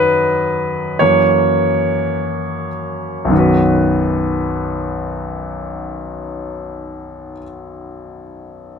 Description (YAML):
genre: pop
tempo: free time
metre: none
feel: none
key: B major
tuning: A4 = 440 Hz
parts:
  - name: clear concert grand piano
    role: solo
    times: 0.0-8.8 s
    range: B1 to D#5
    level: -16 LUFS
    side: equal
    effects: none
room: moderate plate reverb, RT60 3.0 s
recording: none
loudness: -15 LUFS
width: side -6 dB against mid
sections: 0.0-3.3 A section; 3.3-8.2 B section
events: slowing down 0.0-3.3; grand piano solo 0.0-3.3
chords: 0.0 B/F#; 1.0 F#7; 3.3 B